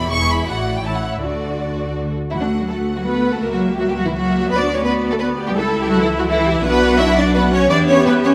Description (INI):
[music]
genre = quick classical-period movement for string orchestra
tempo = 167 BPM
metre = 3/4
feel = straight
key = D major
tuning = A4 = 439 Hz
[part]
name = rich studio violin section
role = melody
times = 0.0-8.3 s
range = D5 to C#6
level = -29 LUFS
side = equal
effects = none
[part]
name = warm symphonic violin section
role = second line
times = 0.0-8.3 s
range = D4 to E5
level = -23 LUFS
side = equal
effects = none
[part]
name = rich symphonic viola section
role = accompaniment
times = 0.0-8.3 s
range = A3 to A4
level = -24 LUFS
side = equal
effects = none
[part]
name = rich symphonic cello section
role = bass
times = 0.0-8.3 s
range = E2 to E4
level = -23 LUFS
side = equal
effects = none
[part]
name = rich symphonic double bass section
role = bass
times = 0.0-8.3 s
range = E1 to E2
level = -26 LUFS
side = equal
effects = none
[sound]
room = moderate scoring stage reverb, RT60 2.0 s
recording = none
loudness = -18 LUFS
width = mono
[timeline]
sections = 0.0-2.3 A section; 2.3-8.3 B section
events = none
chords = 0.1 E; 0.5 D/A; 0.8 A; 1.2 D; 3.4 F#7/C#; 4.5 Bm/D; 5.6 A/C#; 6.6 Bm; 7.7 Em7